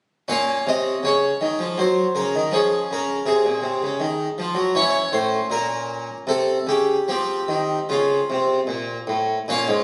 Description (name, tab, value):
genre	classical, baroque-style suite movement for harpsichord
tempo	73-82 BPM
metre	3/4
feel	rubato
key	Bb minor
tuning	A4 = 440 Hz
part	harpsichord	solo	0.3-9.8 s	Ab2 to F5	-22 LUFS	equal	none
room	moderate recital hall reverb, RT60 1.6 s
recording	recorded on a phone in the room, club reverb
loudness	-22 LUFS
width	mono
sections	0.3-9.8 A section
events	none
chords	0.3 Bbm; 1.8 Gb; 2.5 Db; 4.0 Ebmadd11; 4.7 A7b9; 7.1 F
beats	| 0.27 1.03 1.78 | 2.53 3.27 4.00 | 4.74 5.50 6.28 | 7.08 7.89 8.69 | 9.49